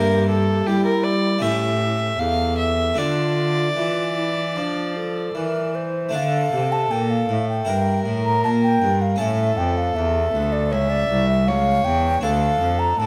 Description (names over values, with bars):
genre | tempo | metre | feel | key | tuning
classical, baroque-style sonata movement with continuo | 78 BPM | 4/4 | straight | D minor | A4 = 440 Hz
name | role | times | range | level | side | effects
mellow baroque flute | melody | 0.0-13.1 s | D4 to Bb5 | -26 LUFS | equal | none
warm violin | second line | 0.0-13.1 s | G4 to F5 | -27 LUFS | equal | none
harpsichord | accompaniment | 0.0-13.1 s | C2 to Bb4 | -30 LUFS | equal | none
rich cello | bass | 0.0-13.1 s | C2 to G3 | -25 LUFS | equal | none
room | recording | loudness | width
moderate recital hall reverb, RT60 1.4 s | close, detailed microphones | -21 LUFS | mono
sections
0.0-6.1 A section; 6.1-13.1 B section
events
none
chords
0.0 Edim/G; 1.4 A7; 3.0 Dm; 6.1 D5; 7.7 Edim/G; 9.2 A; 12.2 Dm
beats
0.67 1.42 2.19 | 2.98 3.77 4.56 5.35 | 6.14 6.91 7.67 8.44 | 9.20 9.96 10.72 11.48 | 12.23 12.99